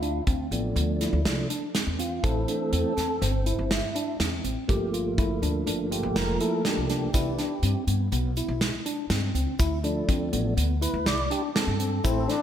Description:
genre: progressive instrumental, band music in an uneven meter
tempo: 122 BPM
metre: 5/4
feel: straight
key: unclear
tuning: A4 = 440 Hz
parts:
  - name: tonewheel organ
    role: accompaniment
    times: 0.0-12.4 s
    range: E3 to D5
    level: -30 LUFS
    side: right 1 dB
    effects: overdrive, slow rotary speaker, slapback echo
  - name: mellow tine electric piano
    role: arpeggios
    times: 0.0-12.4 s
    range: B3 to G4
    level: -31 LUFS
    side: left 1 dB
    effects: medium stereo tremolo, slapback echo
  - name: upright bass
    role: bass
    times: 0.0-12.2 s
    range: F1 to G2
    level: -28 LUFS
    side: equal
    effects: none
  - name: natural country drum kit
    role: drums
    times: 0.0-12.4 s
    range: hi-hat, kick drum, snare drum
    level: -29 LUFS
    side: equal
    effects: none
  - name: tube shaker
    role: percussion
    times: 7.1-12.3 s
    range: none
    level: -43 LUFS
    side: left 6 dB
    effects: none
  - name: warm trombone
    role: second line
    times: 12.0-12.4 s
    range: C4 to D4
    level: -29 LUFS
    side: left 5 dB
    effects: none
room: moderate lush hall reverb, RT60 1.7 s, small room ambience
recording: big arena sound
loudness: -24 LUFS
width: side -10 dB against mid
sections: 0.0-12.4 A section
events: tonewheel organ solo 0.0-12.4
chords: 0.0 Dm; 2.2 Am; 4.7 Gm7; 7.1 Cmaj7; 9.6 Dm

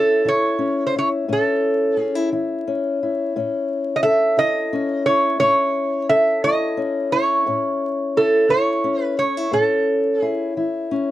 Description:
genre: acoustic country blues, solo or duo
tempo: 58 BPM (dotted quarters)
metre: 12/8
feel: straight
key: A major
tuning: A4 = 442 Hz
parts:
  - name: metal-body resonator slide guitar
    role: melody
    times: 0.0-10.5 s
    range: A4 to E5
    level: -18 LUFS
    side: right 2 dB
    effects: none
  - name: fingerpicked old ladder-braced acoustic guitar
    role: accompaniment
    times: 0.0-11.1 s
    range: A2 to A4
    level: -22 LUFS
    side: left 4 dB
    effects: none
room: light reverb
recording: dry, close 1970s-style studio recording, vinyl crackle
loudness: -17 LUFS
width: side -14 dB against mid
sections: 0.0-11.1 A section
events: none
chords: 0.0 A

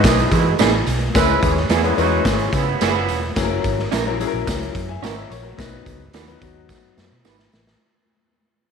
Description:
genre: uptempo 1960s-style soul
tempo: 108 BPM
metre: 4/4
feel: straight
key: unclear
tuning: A4 = 440 Hz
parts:
  - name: clear horn section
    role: second line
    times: 0.0-3.2 s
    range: B2 to B4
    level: -22 LUFS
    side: right 10 dB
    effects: slapback echo
  - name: clear grand piano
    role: accompaniment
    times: 0.0-7.1 s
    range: F#3 to G#5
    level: -23 LUFS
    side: left 9 dB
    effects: none
  - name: vintage muted fingered electric bass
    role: bass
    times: 0.0-7.7 s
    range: E1 to E3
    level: -24 LUFS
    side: right 1 dB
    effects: tube saturation
  - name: raw garage drum kit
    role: drums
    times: 0.0-7.8 s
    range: hi-hat, kick drum, snare drum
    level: -21 LUFS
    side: equal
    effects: none
  - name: tambourine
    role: percussion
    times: 0.0-7.7 s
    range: none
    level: -36 LUFS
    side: right 11 dB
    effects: none
  - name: electric guitar through a small old amp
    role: stabs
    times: 0.6-7.4 s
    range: B3 to B4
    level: -24 LUFS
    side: right 11 dB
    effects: spring reverb
room: wet echo chamber reverb, RT60 1.3 s, studio reverb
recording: 1960s-style stereo with parts hard left and right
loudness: -16 LUFS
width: side -6 dB against mid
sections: 0.0-7.8 A section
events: fade-out 0.0-7.8; drum fill 6.7-7.8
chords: 0.0 Emaj7; 1.2 C#m7; 3.4 F#7; 5.6 B

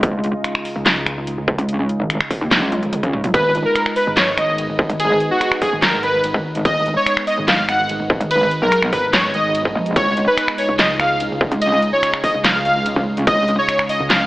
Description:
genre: heavy wobble dubstep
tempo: 145 BPM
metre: 4/4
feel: half-time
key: G# dorian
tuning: A4 = 440 Hz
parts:
  - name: evolving wavetable pad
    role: sustained chords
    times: 0.0-14.3 s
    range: C#3 to E#4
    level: -26 LUFS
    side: right 1 dB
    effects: phaser, built-in reverb, sidechain pumping
  - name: metallic wobble bass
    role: bass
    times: 0.0-13.6 s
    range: G#1 to D#2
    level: -20 LUFS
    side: equal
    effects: distortion, chorus, overdrive
  - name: dubstep drum kit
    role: drums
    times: 0.0-14.2 s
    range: finger snaps, handclaps, hi-hat, ride cymbal, snare drum, toms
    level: -19 LUFS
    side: equal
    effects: small room ambience
  - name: electronic kick drum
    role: drums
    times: 0.0-13.4 s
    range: none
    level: -20 LUFS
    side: equal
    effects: distortion, small room ambience
  - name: pulsing pluck wobble bass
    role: bass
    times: 0.8-1.6, 4.1-14.3 s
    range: G#1 to C#2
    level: -27 LUFS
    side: equal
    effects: distortion, chorus, overdrive
  - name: soft supersaw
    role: melody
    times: 3.3-14.2 s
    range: F#4 to F#5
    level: -17 LUFS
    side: equal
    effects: dub echo
room: moderate lush hall reverb, RT60 1.7 s, digital ambience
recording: AM radio sound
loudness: -15 LUFS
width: side -18 dB against mid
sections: 0.0-14.3 A section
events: drum fill 2.5-3.3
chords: 0.0 C#add9; 3.3 G#m; 10.0 C#add9

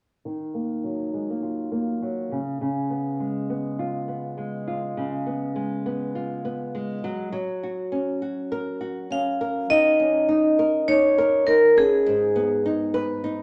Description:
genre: indie pop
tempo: 102 BPM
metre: 4/4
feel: swing 55% on 16ths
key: Eb minor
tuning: A4 = 440 Hz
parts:
  - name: nylon-string guitar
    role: accompaniment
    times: 0.3-13.4 s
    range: Ab2 to Cb5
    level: -28 LUFS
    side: equal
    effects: warbly pitch drift, low-pass filter
  - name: vibraphone with medium hard mallets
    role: melody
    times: 9.1-12.6 s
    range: Ab4 to F5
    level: -21 LUFS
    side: equal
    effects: none
room: wet large studio reverb, RT60 1.2 s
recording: none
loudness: -24 LUFS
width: mono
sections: 0.2-9.7 A section; 9.7-13.4 B section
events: filter sweep on nylon-string guitar 0.2-9.7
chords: 0.2 Ebmadd9; 2.3 Db7; 7.0 Gb; 9.7 Eb5; 12.1 Abm

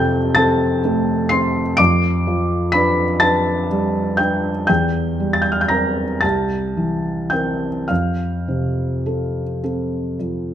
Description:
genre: classical, romantic nocturne for solo piano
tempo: 34-43 BPM (dotted quarters)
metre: 6/8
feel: rubato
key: F major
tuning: A4 = 440 Hz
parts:
  - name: felt-muted upright piano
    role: solo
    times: 0.0-10.5 s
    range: C2 to D7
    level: -16 LUFS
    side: equal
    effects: none
room: moderate recital hall reverb, RT60 1.3 s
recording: close, detailed microphones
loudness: -16 LUFS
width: side -10 dB against mid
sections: 0.0-10.5 A section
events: none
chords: 0.0 F; 1.8 G7/F; 4.7 C7/E; 6.2 C7; 7.9 F

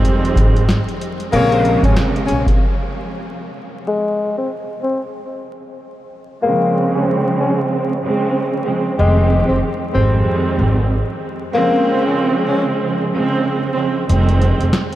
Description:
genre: hip hop, boom-bap hip-hop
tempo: 94 BPM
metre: 4/4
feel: swing 59% on 16ths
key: F minor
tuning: A4 = 442 Hz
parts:
  - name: warm studio string section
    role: accompaniment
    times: 0.0-14.8 s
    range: F2 to G4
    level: -18 LUFS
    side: right 2 dB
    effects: low-pass filter
  - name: booming analog drum machine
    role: drums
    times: 0.0-2.6, 14.1-15.0 s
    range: hi-hat, kick drum, snare drum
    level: -18 LUFS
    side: equal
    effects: overdrive
  - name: upright bass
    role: bass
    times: 0.4-2.5, 9.0-14.7 s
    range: F1 to Bb1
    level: -17 LUFS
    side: equal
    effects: none
  - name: warm tenor saxophone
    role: melody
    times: 1.3-12.7 s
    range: Ab3 to Db4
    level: -21 LUFS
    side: left 3 dB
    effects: low-pass filter, analog delay
  - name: clear trumpet section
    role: stabs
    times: 1.3-1.8 s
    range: Bb3 to Db5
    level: -32 LUFS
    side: left 4 dB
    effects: analog delay
room: moderate huge ambient reverb, RT60 8.2 s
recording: dreamy mix soaked in reverb, vinyl crackle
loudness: -14 LUFS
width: side -14 dB against mid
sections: 0.0-3.9 A section; 3.9-14.1 B section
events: break 2.6-3.9, 3.9-6.4; filter sweep 3.9-14.1; kick muted 14.1-15.0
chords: 0.0 Fm9; 1.3 Bbm7; 3.9 N.C.; 6.4 Dbmaj7; 9.0 Fm9; 11.5 Dbmaj7; 14.1 Fm9

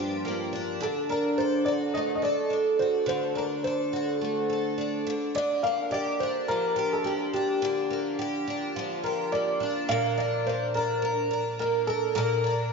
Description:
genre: pop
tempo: 106 BPM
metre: 4/4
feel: swing 55% on 16ths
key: G minor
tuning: A4 = 437 Hz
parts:
  - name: dark upright piano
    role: melody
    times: 0.0-12.7 s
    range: G4 to F5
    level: -28 LUFS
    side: equal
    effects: lush chorus, diffuse ambient delay
  - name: picked twelve-string acoustic guitar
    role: accompaniment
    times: 0.0-12.7 s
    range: G2 to Bb4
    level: -28 LUFS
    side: right 1 dB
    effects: double-tracked left and right
room: wet lush hall reverb, RT60 1.8 s, small room ambience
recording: dreamy mix soaked in reverb, nothing above 7.6 kHz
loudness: -25 LUFS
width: side -4 dB against mid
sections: 0.0-9.9 A section; 9.9-12.7 B section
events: none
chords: 0.0 Gm7; 0.8 D; 5.1 Gm7/D; 9.9 Bb

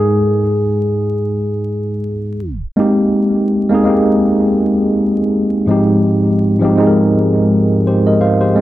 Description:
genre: hip hop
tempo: 83 BPM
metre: 4/4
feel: swing 56% on 16ths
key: Ab major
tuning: A4 = 439 Hz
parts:
  - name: tine electric piano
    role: solo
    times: 0.0-8.6 s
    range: Ab2 to F5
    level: -12 LUFS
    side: equal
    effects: medium stereo tremolo, low-pass filter, analog delay
room: wet small room reverb, RT60 0.5 s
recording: vinyl crackle, tape stop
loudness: -12 LUFS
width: side -14 dB against mid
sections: 0.0-2.8 A section; 2.8-8.6 B section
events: tine electric piano solo 0.0-2.8; tape stop 2.4-2.8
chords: 0.0 Ab5; 2.8 Abmaj9; 5.7 Fm9/Ab

